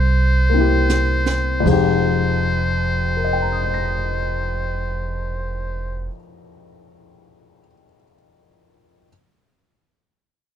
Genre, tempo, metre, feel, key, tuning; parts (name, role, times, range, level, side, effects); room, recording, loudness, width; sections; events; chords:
jazz ballad; 52 BPM; 4/4; swing 69% on 8ths; F minor; A4 = 436 Hz
trumpet with metal mute; melody; 0.0-6.1 s; C5; -24 LUFS; equal
upright bass; bass; 0.0-6.1 s; F1 to C2; -21 LUFS; right 1 dB
warm baby grand piano; accompaniment; 0.5-9.1 s; F2 to Bb6; -22 LUFS; left 4 dB
jazz brush drum kit; drums; 0.9-1.8 s; hi-hat, kick drum, ride cymbal, snare drum; -26 LUFS; right 3 dB
little or no reverb; close, detailed microphones; -17 LUFS; side -9 dB against mid
0.0-2.0 A section; 2.0-6.6 B section
slowing down 0.0-2.0; drum fill 0.9-2.0
0.0 C7; 1.4 Fm9